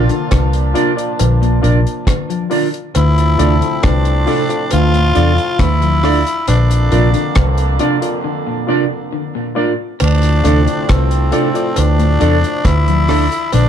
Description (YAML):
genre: roots reggae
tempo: 68 BPM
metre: 4/4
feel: straight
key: D minor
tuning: A4 = 445 Hz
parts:
  - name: growling tenor saxophone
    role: melody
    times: 0.0-13.7 s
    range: C4 to F4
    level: -19 LUFS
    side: left 2 dB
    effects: tape echo
  - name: warm trombone section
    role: second line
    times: 0.0-13.7 s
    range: F2 to D4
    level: -24 LUFS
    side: right 2 dB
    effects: tape echo
  - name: mellow electric guitar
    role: accompaniment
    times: 0.0-13.3 s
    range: D4 to D5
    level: -21 LUFS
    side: right 5 dB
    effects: wide subtle chorus, tape echo
  - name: electric guitar through a small old amp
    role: arpeggios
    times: 0.0-13.7 s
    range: A2 to F3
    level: -23 LUFS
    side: left 4 dB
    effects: lush chorus
  - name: barky reed electric piano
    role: stabs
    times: 0.0-13.2 s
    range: F4 to D5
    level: -22 LUFS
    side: left 3 dB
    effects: overdrive
  - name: vintage muted fingered electric bass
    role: bass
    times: 0.0-13.7 s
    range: Bb1 to E2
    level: -13 LUFS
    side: equal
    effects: none
  - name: deep reggae drum kit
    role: drums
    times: 0.1-13.7 s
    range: hi-hat, kick drum, rim click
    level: -19 LUFS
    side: equal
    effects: none
  - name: cowbell and jawbone-type rattle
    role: percussion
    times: 0.3-13.7 s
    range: none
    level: -26 LUFS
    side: right 3 dB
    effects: none
room: moderate club reverb, RT60 0.6 s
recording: dark, warm production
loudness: -12 LUFS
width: side -9 dB against mid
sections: 0.0-10.0 A section; 10.0-13.7 A section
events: break 8.2-10.0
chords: 0.0 Bb; 3.0 Dm; 6.5 Bb; 10.0 Dm